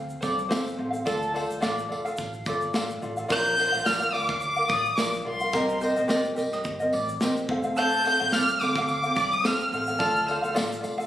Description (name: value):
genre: acoustic pop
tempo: 108 BPM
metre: 4/4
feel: swing 55% on 16ths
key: Bb major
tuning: A4 = 437 Hz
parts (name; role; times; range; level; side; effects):
- ukulele; accompaniment; 0.0-11.1 s; C4 to F5; -27 LUFS; equal; none
- mandolin; arpeggios; 0.0-11.1 s; A4 to F5; -32 LUFS; right 2 dB; none
- upright bass; bass; 0.0-11.1 s; F1 to F2; -38 LUFS; right 1 dB; none
- modern studio drum kit; drums; 0.1-11.1 s; kick drum, shaker, snare drum; -32 LUFS; equal; none
- tambourine; percussion; 0.2-11.0 s; none; -41 LUFS; left 1 dB; none
- rich violin; melody; 3.3-10.5 s; C6 to G6; -24 LUFS; equal; none
room: moderate studio reverb, RT60 0.6 s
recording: recorded on a phone in the room, studio reverb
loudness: -23 LUFS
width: side -12 dB against mid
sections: 0.0-3.3 A section; 3.3-11.1 B section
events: none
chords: 0.0 F; 3.3 Bb; 5.5 Cm7; 7.5 F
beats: 0.51 | 1.07 1.63 2.19 2.75 | 3.30 3.86 4.42 4.98 | 5.54 6.09 6.65 7.21 | 7.77 8.32 8.88 9.44 | 10.00 10.55